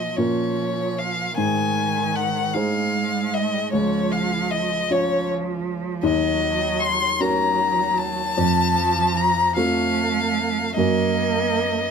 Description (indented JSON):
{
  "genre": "classical, slow romantic movement for piano trio",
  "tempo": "51 BPM (dotted quarters)",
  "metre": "6/8",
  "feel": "uneven beats, rubato",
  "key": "unclear",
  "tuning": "A4 = 444 Hz",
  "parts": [
    { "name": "warm violin", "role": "melody", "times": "0.0-11.9 s", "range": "Db5 to C6", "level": "-22 LUFS", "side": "left 3 dB", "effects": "none" },
    { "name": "rich cello", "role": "second line", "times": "0.0-11.9 s", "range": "Eb3 to Bb3", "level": "-26 LUFS", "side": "right 7 dB", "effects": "none" },
    { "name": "warm baby grand piano", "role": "accompaniment", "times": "0.0-11.9 s", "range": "Db2 to Db5", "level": "-24 LUFS", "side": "equal", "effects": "none" }
  ],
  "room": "light reverb",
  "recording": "none",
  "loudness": "-19 LUFS",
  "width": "side -6 dB against mid",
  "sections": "0.0-11.9 A section",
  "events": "none",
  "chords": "0.2 Bbm; 1.4 Ab; 3.7 Db; 6.0 Ebm7; 8.4 F; 10.8 Ebm/Gb",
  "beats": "0.17 | 1.38 2.55 | 3.74 4.90 | 6.04 7.20 | 8.38 9.56 | 10.77"
}